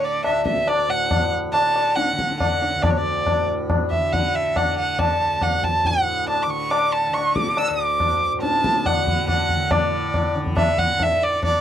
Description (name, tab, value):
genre	indian classical, Hindustani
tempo	140 BPM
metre	4/4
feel	straight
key	D raga hamsadhwani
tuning	A4 = 440 Hz
part	warm violin	melody	0.0-11.6 s	C#5 to E6	-21 LUFS	right 2 dB	none
part	tanpura	drone	0.0-11.6 s	D2 to D3	-29 LUFS	right 1 dB	none
part	tabla	percussion	0.2-11.6 s	none	-22 LUFS	left 2 dB	none
room	light reverb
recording	dry, close 1970s-style studio recording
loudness	-18 LUFS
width	side -10 dB against mid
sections	0.0-9.7 A section; 9.7-11.6 B section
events	none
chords	none